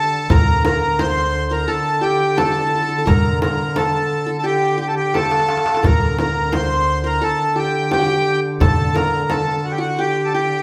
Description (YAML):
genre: Arabic maqam ensemble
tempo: 87 BPM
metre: 4/4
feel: straight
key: D maqam hijaz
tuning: A4 = 440 Hz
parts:
  - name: accordion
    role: melody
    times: 0.0-10.6 s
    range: F#4 to C5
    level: -22 LUFS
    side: equal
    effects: none
  - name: qanun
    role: second line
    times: 0.0-10.6 s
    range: F#4 to C5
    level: -26 LUFS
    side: equal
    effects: none
  - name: warm duduk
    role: drone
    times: 0.0-10.6 s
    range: D3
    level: -27 LUFS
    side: equal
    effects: none
  - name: upright bass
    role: bass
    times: 0.3-8.9 s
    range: D2 to D3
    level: -25 LUFS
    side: equal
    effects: none
  - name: darbuka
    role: percussion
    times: 0.3-10.4 s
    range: none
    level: -27 LUFS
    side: equal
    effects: none
  - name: frame drum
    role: percussion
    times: 0.3-9.5 s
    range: none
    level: -23 LUFS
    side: equal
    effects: none
room: wet large studio reverb, RT60 1.3 s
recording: band playing live in one room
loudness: -18 LUFS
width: mono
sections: 0.0-10.6 A section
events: drum fill 5.1-5.8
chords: none